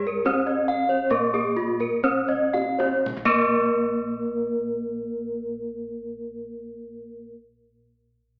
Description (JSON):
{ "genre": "Balinese gamelan", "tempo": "56-75 BPM", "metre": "4/4", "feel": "straight", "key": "Bb slendro", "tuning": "A4 = 441 Hz", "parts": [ { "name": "gamelan-type bronze metallophone", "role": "melody", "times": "0.0-7.3 s", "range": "Ab3-45c to C4+30c", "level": "-29 LUFS", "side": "equal", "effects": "none" }, { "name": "gamelan-type bronze metallophone", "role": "arpeggios", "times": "0.0-7.3 s", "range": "F4+25c to Eb5-35c", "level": "-30 LUFS", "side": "equal", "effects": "none" }, { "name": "gamelan-type bossed gongs", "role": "bass", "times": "0.0-7.2 s", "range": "Bb1 to Ab4-45c", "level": "-42 LUFS", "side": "equal", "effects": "none" }, { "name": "kendang", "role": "percussion", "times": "0.1-3.6 s", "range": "none", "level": "-38 LUFS", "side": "equal", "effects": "none" }, { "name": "gamelan-type bronze metallophone", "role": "arpeggios", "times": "0.7-7.3 s", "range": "Ab4-45c to F5+25c", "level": "-30 LUFS", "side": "equal", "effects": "none" } ], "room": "wet recital hall reverb, RT60 1.6 s", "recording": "AM radio sound", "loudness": "-24 LUFS", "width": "mono", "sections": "0.0-3.1 A section; 3.1-7.3 B section", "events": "slowing down 0.0-3.1; drum fill 1.8-3.1", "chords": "none" }